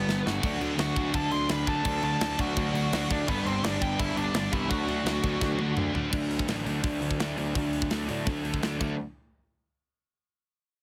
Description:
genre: punk rock.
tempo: 169 BPM.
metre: 4/4.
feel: straight.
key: D major.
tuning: A4 = 440 Hz.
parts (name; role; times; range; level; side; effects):
nasal lead guitar with a parked wah; melody; 0.0-5.8 s; B3 to C6; -34 LUFS; equal; overdrive, digital delay.
crunchy overdriven guitar; riff; 0.0-9.0 s; G2 to D4; -37 LUFS; equal; none.
crunchy overdriven guitar; riff; 0.0-8.9 s; G2 to D4; -34 LUFS; equal; none.
fuzz picked electric bass; bass; 0.0-9.0 s; G1 to A2; -36 LUFS; equal; overdrive.
tight metal drum kit; drums; 0.1-8.9 s; crash cymbal, hi-hat, kick drum, snare drum, toms; -34 LUFS; equal; none.
scooped high-gain guitar; riff; 0.4-6.1 s; G2 to D4; -39 LUFS; equal; distortion.
room: little or no reverb.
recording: heavily compressed radio sound.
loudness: -28 LUFS.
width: mono.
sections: 0.0-6.1 A section; 6.1-9.0 B section; 9.0-10.4 C section.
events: drum fill 0.1-0.4, 5.4-6.1.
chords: 0.4 D; 3.3 G; 4.7 D; 9.0 N.C..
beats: 0.08 | 0.43 0.79 1.15 1.50 | 1.86 2.21 2.57 2.92 | 3.28 3.63 3.99 4.34 | 4.70 5.06 5.41 5.77 | 6.12 6.48 6.84 7.19 | 7.55 7.91 8.27 8.62.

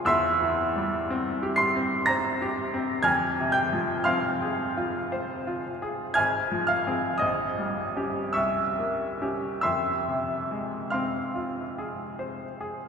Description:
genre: classical, romantic nocturne for solo piano.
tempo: 46-61 BPM.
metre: 3/4.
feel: rubato.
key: unclear.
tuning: A4 = 440 Hz.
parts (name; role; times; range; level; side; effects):
bright upright piano; solo; 0.0-12.9 s; Ab1 to C7; -24 LUFS; equal; none.
room: wet cathedral reverb, RT60 6.6 s.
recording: recorded in a church or concert hall.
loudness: -24 LUFS.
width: side -6 dB against mid.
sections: 0.0-12.9 A section.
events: none.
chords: 0.1 C/E; 3.1 Fm; 6.2 Fm/Ab; 7.2 Gdim/Bb; 8.4 C7b9; 9.7 Fm.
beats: | 0.09 1.09 2.09 | 3.08 4.08 5.12 | 6.18 7.23 8.37 | 9.65 10.92 12.18.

